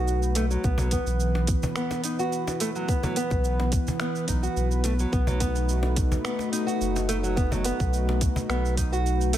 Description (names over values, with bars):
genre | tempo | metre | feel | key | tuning
organic downtempo | 107 BPM | 4/4 | straight | unclear | A4 = 440 Hz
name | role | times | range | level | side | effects
warm analog pad | sustained chords | 0.0-9.4 s | E3 to B4 | -31 LUFS | equal | chorus, sidechain pumping
nylon-string guitar | arpeggios | 0.0-9.4 s | F#3 to F#4 | -29 LUFS | equal | low-pass filter, tape echo
warm sub bass | bass | 0.0-9.4 s | F#1 to B1 | -26 LUFS | equal | none
organic electronic drum kit | drums | 0.1-9.4 s | finger snaps, hi-hat, shaker | -35 LUFS | right 3 dB | none
cajon | percussion | 0.4-9.4 s | none | -33 LUFS | left 1 dB | none
electronic kick drum | drums | 0.6-8.9 s | none | -26 LUFS | equal | none
room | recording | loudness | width
light reverb | none | -23 LUFS | side -12 dB against mid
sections
0.0-9.4 A section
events
none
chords
0.0 B7; 0.6 Bsus4; 5.1 B7